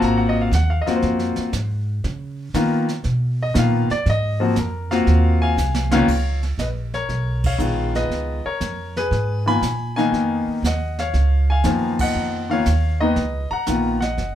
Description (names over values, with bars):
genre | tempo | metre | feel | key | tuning
jazz piano trio | 119 BPM | 4/4 | swing 69% on 8ths | Db mixolydian | A4 = 440 Hz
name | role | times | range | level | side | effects
clear baby grand piano | melody | 0.0-14.3 s | Db2 to Cb6 | -20 LUFS | left 2 dB | none
upright bass | bass | 0.0-14.3 s | Gb1 to Eb3 | -21 LUFS | right 1 dB | none
jazz brush drum kit | drums | 0.0-14.3 s | brushed snare drum, crash cymbal, hi-hat, kick drum, snare drum | -28 LUFS | right 4 dB | none
room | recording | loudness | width
wet club reverb, RT60 0.5 s | heard from further back in the room | -18 LUFS | side -11 dB against mid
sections
0.0-6.1 A section; 6.1-14.3 B section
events
grand piano solo 0.0-6.1; drum fill 5.6-6.1; band accent 7.3, 11.9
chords
0.0 Ab13; 2.0 Db13; 4.1 Ab13; 6.1 Db13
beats
| 0.02 0.52 1.03 1.53 | 2.04 2.54 3.05 3.55 | 4.06 4.56 5.07 5.57 | 6.08 6.58 7.09 7.60 | 8.10 8.61 9.11 9.62 | 10.13 10.63 11.14 11.64 | 12.15 12.66 13.16 13.67 | 14.18